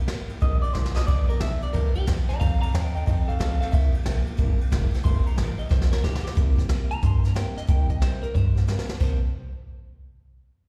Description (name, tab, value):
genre	rockabilly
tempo	182 BPM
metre	4/4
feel	swing 65% on 8ths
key	C mixolydian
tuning	A4 = 440 Hz
part	picked steel-string acoustic guitar	accompaniment	0.0-9.2 s	G2 to A4	-38 LUFS	equal	slapback echo
part	upright bass	bass	0.1-9.2 s	F1 to G2	-28 LUFS	equal	none
part	jazz brush drum kit	drums	0.1-9.1 s	crash cymbal, hi-hat, kick drum, ride cymbal, snare drum	-26 LUFS	equal	none
part	clean electric guitar	melody	0.4-9.2 s	G4 to C6	-36 LUFS	equal	phaser, slapback echo, digital delay
room	little or no reverb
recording	live gig heard through the venue's PA, recital hall reverb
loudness	-24 LUFS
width	mono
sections	0.0-6.4 A section; 6.4-9.0 B section; 9.0-10.3 C section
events	drum fill 0.8-1.1, 5.7-6.4, 8.7-9.0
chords	0.0 C7; 1.1 G7; 2.4 F7; 3.7 C7; 9.0 C9